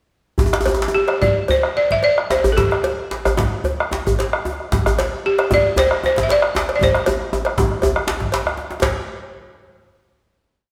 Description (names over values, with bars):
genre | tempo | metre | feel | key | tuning
west african traditional, West African drum ensemble | 109-126 BPM | 4/4 | straight | C major pentatonic | A4 = 441 Hz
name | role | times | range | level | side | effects
bombo | percussion | 0.4-9.1 s | none | -25 LUFS | equal | none
djembe | percussion | 0.4-9.1 s | none | -28 LUFS | equal | none
djembe | percussion | 0.4-9.1 s | none | -24 LUFS | equal | none
cowbell | percussion | 0.7-9.1 s | none | -29 LUFS | equal | none
balafon | melody | 0.9-8.3 s | G4 to E5 | -20 LUFS | equal | none
room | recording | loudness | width
moderate scoring stage reverb, RT60 1.6 s | none | -18 LUFS | mono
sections
0.4-8.8 A section; 8.8-10.7 final hit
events
speeding up 0.4-10.7; drum fill 6.8-8.8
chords
none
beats
| 0.38 0.93 1.48 2.02 | 2.57 3.11 3.65 4.19 | 4.72 5.25 5.77 6.29 | 6.81 7.32 7.83 8.33 | 8.83